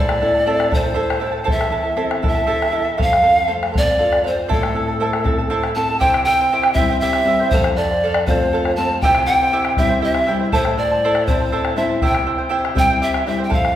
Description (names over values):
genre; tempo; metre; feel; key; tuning
andean folk, Andean ensemble; 80 BPM (dotted quarters); 6/8; straight; unclear; A4 = 441 Hz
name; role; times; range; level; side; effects
pan flute; melody; 0.0-13.8 s; A4 to A5; -18 LUFS; equal; none
charango; accompaniment; 0.0-13.8 s; E4 to A5; -22 LUFS; right 2 dB; none
nylon-string guitar; accompaniment; 0.0-13.8 s; E2 to A4; -24 LUFS; left 3 dB; none
bombo; percussion; 0.1-13.8 s; none; -22 LUFS; left 1 dB; none
room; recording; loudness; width
wet recital hall reverb, RT60 1.7 s; recorded in a church or concert hall; -15 LUFS; side -11 dB against mid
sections
0.0-6.0 A section; 6.0-13.8 B section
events
none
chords
0.0 Am; 3.0 F; 4.5 Am; 6.0 C; 7.5 F; 9.0 C; 10.5 Am; 12.0 C